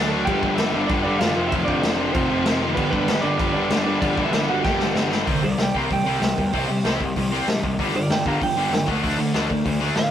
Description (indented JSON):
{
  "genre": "punk rock",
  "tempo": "192 BPM",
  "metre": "4/4",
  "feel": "straight",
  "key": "G major",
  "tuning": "A4 = 440 Hz",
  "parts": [
    { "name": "lightly driven lead guitar", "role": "melody", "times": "0.0-10.1 s", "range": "B3 to Bb5", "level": "-25 LUFS", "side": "right 3 dB", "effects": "none" },
    { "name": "distorted electric guitar", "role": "riff", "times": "0.0-10.1 s", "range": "F2 to D4", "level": "-25 LUFS", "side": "left 5 dB", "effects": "overdrive" },
    { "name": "distorted electric guitar", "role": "riff", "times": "0.0-10.1 s", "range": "F2 to D4", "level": "-29 LUFS", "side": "right 7 dB", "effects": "overdrive" },
    { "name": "thick fuzz guitar", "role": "riff", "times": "0.0-5.3 s", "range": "F2 to D4", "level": "-28 LUFS", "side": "right 1 dB", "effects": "none" },
    { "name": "fuzz picked electric bass", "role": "bass", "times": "0.0-10.1 s", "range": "F1 to D3", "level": "-27 LUFS", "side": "equal", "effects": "overdrive" },
    { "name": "raw garage drum kit", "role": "drums", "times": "0.3-10.0 s", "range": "crash cymbal, hi-hat, kick drum, snare drum", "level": "-25 LUFS", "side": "equal", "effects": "none" }
  ],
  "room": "light reverb",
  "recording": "rough rehearsal-room recording",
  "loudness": "-19 LUFS",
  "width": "side -10 dB against mid",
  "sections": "0.0-5.3 A section; 5.3-10.1 B section",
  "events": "drum fill 4.6-5.3; lead electric guitar solo 5.3-10.1",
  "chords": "0.3 G; 1.4 F; 2.8 G; 5.3 C5; 7.8 G5; 8.9 D5",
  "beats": "| 0.28 0.59 0.90 1.21 | 1.52 1.83 2.15 2.46 | 2.77 3.08 3.40 3.71 | 4.02 4.33 4.64 4.96 | 5.27 5.59 5.90 6.21 | 6.53 6.84 7.16 7.47 | 7.78 8.10 8.41 8.72 | 9.04 9.35 9.66 9.97"
}